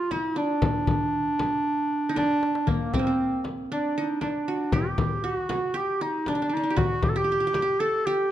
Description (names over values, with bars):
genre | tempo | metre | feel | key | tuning
Arabic maqam ensemble | 117 BPM | 4/4 | straight | D maqam hijaz | A4 = 440 Hz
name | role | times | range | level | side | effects
warm clarinet | melody | 0.0-8.3 s | Bb3 to A4 | -26 LUFS | right 1 dB | none
qanun | second line | 0.0-8.3 s | Bb3 to A4 | -29 LUFS | right 2 dB | none
darbuka | percussion | 0.1-7.7 s | none | -31 LUFS | left 2 dB | none
frame drum | percussion | 0.1-7.7 s | none | -29 LUFS | left 2 dB | none
room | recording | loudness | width
moderate recital hall reverb, RT60 1.7 s | dark, warm production | -23 LUFS | side -12 dB against mid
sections
0.0-2.7 A section; 2.7-8.3 B section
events
drum fill 2.2-2.7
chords
none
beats
0.11 | 0.62 1.14 1.65 2.16 | 2.67 3.19 3.70 4.21 | 4.72 5.24 5.75 6.26 | 6.77 7.28 7.80 8.31